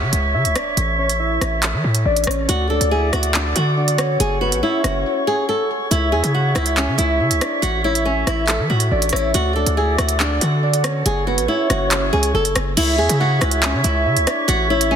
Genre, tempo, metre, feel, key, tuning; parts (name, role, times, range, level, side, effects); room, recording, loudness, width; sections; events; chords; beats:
hip hop, drill; 140 BPM; 4/4; half-time; C# phrygian; A4 = 439 Hz
hollow flute section; sustained chords; 0.0-15.0 s; G#4 to D6; -24 LUFS; right 2 dB
hard-hitting 808-style bass; bass; 0.0-15.0 s; F#1 to E3; -20 LUFS; equal
impact; sound effects; 0.1-0.8 s; barely audible
drill drum kit; drums; 0.1-14.9 s; crash cymbal, handclaps, hi-hat, rim click; -22 LUFS; right 1 dB
soft octave-layered synth lead; second line; 0.3-15.0 s; B4 to F#5; -25 LUFS; left 1 dB; chorus, phaser, ping-pong delay
flamenco guitar; melody; 2.5-15.0 s; C#4 to A4; -21 LUFS; equal; ping-pong delay
light reverb, digital ambience; dense, heavily limited modern master; -16 LUFS; side -8 dB against mid
0.0-12.8 A section; 12.8-15.0 B section
break 0.0-2.5; impact 0.0-0.8; drums muted 5.1-5.9
0.0 C#m; 0.8 A; 2.5 D; 4.2 F#m; 5.9 C#m; 7.6 A; 9.3 D; 11.1 F#m; 12.8 C#m
0.34 | 0.77 1.20 1.63 2.06 | 2.48 2.91 3.34 3.77 | 4.20 4.63 5.06 5.49 | 5.91 6.34 6.77 7.20 | 7.63 8.06 8.48 8.91 | 9.34 9.77 10.20 10.63 | 11.06 11.48 11.91 12.34 | 12.77 13.20 13.63 14.06 | 14.48 14.91